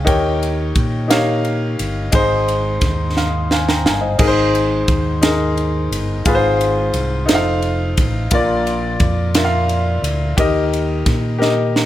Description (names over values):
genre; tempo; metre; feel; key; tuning
slow gospel; 58 BPM (dotted quarters); 6/8; straight; Ab major; A4 = 440 Hz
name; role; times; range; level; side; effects
warm grand piano; accompaniment; 0.0-11.9 s; Ab2 to Bb5; -18 LUFS; left 2 dB; none
fingered electric bass; bass; 0.0-11.9 s; F1 to Bb2; -20 LUFS; equal; none
crisp fusion drum kit; drums; 0.1-11.9 s; crash cymbal, kick drum, ride cymbal, snare drum; -19 LUFS; right 1 dB; none
room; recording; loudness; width
light reverb; none; -14 LUFS; side -13 dB against mid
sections
0.0-4.2 A section; 4.2-11.9 A section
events
drum fill 3.2-4.2, 11.4-11.9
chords
0.1 Eb7; 2.1 Ab; 6.3 Fm/Ab; 7.3 F7; 8.3 Bb; 10.4 Eb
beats
| 0.07 1.10 | 2.14 3.17 | 4.20 5.23 | 6.26 7.29 | 8.32 9.35 | 10.38 11.40